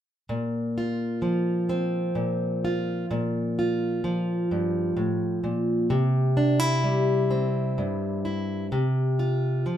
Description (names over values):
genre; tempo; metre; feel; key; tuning
folk; 43 BPM (dotted quarters); 6/8; straight; unclear; A4 = 440 Hz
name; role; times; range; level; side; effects
fingerpicked plugged-in steel-string acoustic guitar; accompaniment; 0.3-9.8 s; G2 to F4; -23 LUFS; equal; none
room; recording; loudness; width
wet studio reverb, RT60 0.5 s; band playing live in one room; -23 LUFS; side -10 dB against mid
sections
0.3-9.8 A section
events
none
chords
0.3 Bbsus2; 5.9 C; 8.7 F5/C